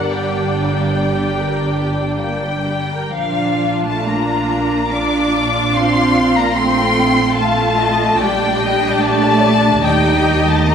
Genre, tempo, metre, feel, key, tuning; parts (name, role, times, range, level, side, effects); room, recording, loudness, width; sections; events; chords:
classical, slow romantic movement for string orchestra; 58-76 BPM; 4/4; rubato; G minor, Bb major from 3.2 s; A4 = 439 Hz
warm studio violin section; melody; 0.0-10.7 s; F5 to D6; -18 LUFS; left 4 dB
rich studio violin section; second line; 0.0-10.7 s; Bb3 to G5; -23 LUFS; left 2 dB
rich studio viola section; accompaniment; 0.0-10.7 s; G3 to G4; -19 LUFS; right 2 dB
rich studio cello section; bass; 0.0-10.7 s; G2 to D4; -21 LUFS; right 2 dB
rich studio double bass section; bass; 0.0-10.7 s; G1 to Eb2; -22 LUFS; right 2 dB
wet church reverb, RT60 3.2 s; recorded in a church or concert hall; -13 LUFS; side -7 dB against mid
0.0-3.2 A section; 3.2-10.7 B section
0.0 Gm; 3.2 Bb; 6.6 F/Bb; 8.2 Gm/Bb; 9.9 Eb